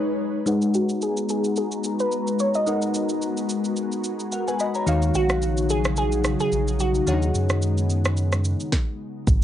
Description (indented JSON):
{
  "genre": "amapiano",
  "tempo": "109 BPM",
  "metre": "4/4",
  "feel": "swing 55% on 16ths",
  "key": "G# dorian",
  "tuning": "A4 = 440 Hz",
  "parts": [
    { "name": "ethereal airy pad", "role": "sustained chords", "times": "0.0-8.7 s", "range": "C#3 to A#5", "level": "-27 LUFS", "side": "left 1 dB", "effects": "ensemble chorus, built-in reverb, sidechain pumping, low-pass filter" },
    { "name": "glassy digital keys", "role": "accompaniment", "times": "0.5-8.7 s", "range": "D#3 to B5", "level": "-26 LUFS", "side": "left 2 dB", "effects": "chorus, low-pass filter" },
    { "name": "afro-pop drum kit", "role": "drums", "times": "0.5-9.4 s", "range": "kick drum, rim click, shaker, snare drum", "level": "-26 LUFS", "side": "right 1 dB", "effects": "cassette tape" },
    { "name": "glassy wavetable pluck", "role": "melody", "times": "0.8-7.6 s", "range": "F#4 to D#5", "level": "-26 LUFS", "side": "right 1 dB", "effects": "chorus, low-pass filter, cassette tape, tape echo" },
    { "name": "warm sub bass", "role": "bass", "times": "4.9-8.6 s", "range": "A#1 to F#2", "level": "-23 LUFS", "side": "equal", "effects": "none" },
    { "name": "deep log drum bass", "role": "bass", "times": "9.3-9.4 s", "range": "G#1", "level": "-21 LUFS", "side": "equal", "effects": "none" }
  ],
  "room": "light reverb",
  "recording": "home recording on cassette, nothing above 10.4 kHz",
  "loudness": "-21 LUFS",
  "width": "side -11 dB against mid",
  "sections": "0.5-9.3 A section",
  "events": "break 0.0-0.5; filter sweep 0.5-9.3; stop 8.7-9.3",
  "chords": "0.5 G#m9; 4.9 D#m9; 7.1 B69/D#"
}